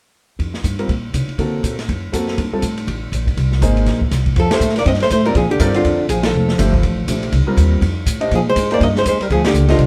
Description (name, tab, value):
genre	jazz, small-group swing and bop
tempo	243 BPM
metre	4/4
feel	swing 59% on 8ths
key	F mixolydian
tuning	A4 = 440 Hz
part	upright bass	bass	0.4-9.9 s	F1 to D3	-20 LUFS	equal	none
part	open jazz drum kit	drums	0.4-9.9 s	hi-hat, kick drum, ride cymbal, snare drum	-26 LUFS	equal	none
part	warm concert grand piano	accompaniment	0.8-9.8 s	G3 to Eb5	-24 LUFS	equal	none
part	archtop guitar, miked and amplified	melody	4.4-9.9 s	F4 to Eb5	-21 LUFS	equal	none
part	breathy trombone	second line	4.4-9.9 s	D3 to C4	-22 LUFS	equal	none
room	moderate studio reverb, RT60 0.8 s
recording	band playing live in one room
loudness	-17 LUFS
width	mono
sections	0.4-4.4 A section; 4.4-9.9 B section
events	band accent 4.5, 6.2, 9.4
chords	0.4 Fsus24; 1.4 D7b13; 2.4 Gmadd9; 3.4 Abadd9; 4.4 F; 5.3 Bb; 6.3 F; 7.3 Cm7; 7.8 F7; 8.3 Bb7